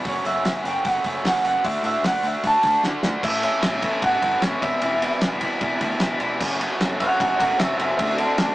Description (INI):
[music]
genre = indie rock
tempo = 151 BPM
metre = 4/4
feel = straight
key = A mixolydian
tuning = A4 = 441 Hz
[part]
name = overdriven electric guitar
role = riff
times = 0.0-8.5 s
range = E2 to F#4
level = -28 LUFS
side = right 1 dB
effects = none
[part]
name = raw garage guitar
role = riff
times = 0.0-8.5 s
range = E2 to F#4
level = -29 LUFS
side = left 1 dB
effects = overdrive
[part]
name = electric guitar through a small old amp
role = melody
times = 0.1-8.5 s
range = A4 to A5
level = -22 LUFS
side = right 1 dB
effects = none
[part]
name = picked electric bass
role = bass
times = 0.1-8.5 s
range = E1 to D3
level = -35 LUFS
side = equal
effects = none
[part]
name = cloth-damped thuddy drum kit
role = drums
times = 0.1-8.5 s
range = crash cymbal, hi-hat, kick drum, ride cymbal, snare drum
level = -25 LUFS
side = equal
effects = none
[part]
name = pedal harmonium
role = sustained chords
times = 3.2-8.5 s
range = E4 to A5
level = -33 LUFS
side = equal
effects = none
[sound]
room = moderate small room reverb, RT60 0.5 s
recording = rough rehearsal-room recording, tube saturation, small speaker sound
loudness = -19 LUFS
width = side -16 dB against mid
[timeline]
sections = 0.0-3.2 A section; 3.2-8.5 B section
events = drum fill 2.8-3.2; clean electric guitar solo 3.2-8.5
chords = 0.1 F#m; 1.6 D; 3.2 A; 4.6 Em7; 6.4 F#m7; 8.0 Dadd9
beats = | 0.05 0.45 0.85 1.25 | 1.64 2.04 2.44 2.83 | 3.23 3.63 4.03 4.42 | 4.82 5.22 5.61 6.01 | 6.41 6.80 7.20 7.60 | 7.99 8.39